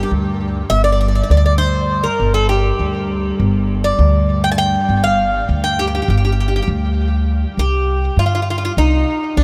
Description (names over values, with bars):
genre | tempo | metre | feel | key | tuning
Turkish makam ensemble | 201 BPM (eighths) | 9/8 | straight | G makam huseyni | A4 = 440 Hz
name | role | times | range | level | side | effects
Greek bouzouki | melody | 0.0-9.4 s | D4 to A5-30c | -21 LUFS | equal | tape echo
clear studio cello section | drone | 0.0-7.6 s | G2 | -26 LUFS | equal | none
upright bass | bass | 0.1-9.4 s | G1 to G2 | -18 LUFS | equal | none
room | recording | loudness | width
light reverb, small room ambience | none | -16 LUFS | mono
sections
0.0-7.6 A section; 7.6-9.4 B section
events
none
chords
none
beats
0.11 0.41 0.71 1.00 1.30 1.60 1.90 | 2.20 2.50 2.80 3.10 3.39 3.69 3.99 4.29 4.59 | 4.89 5.18 5.48 5.78 6.08 6.38 6.68 6.98 7.28 | 7.57 7.87 8.17 8.47 8.77 9.07 9.37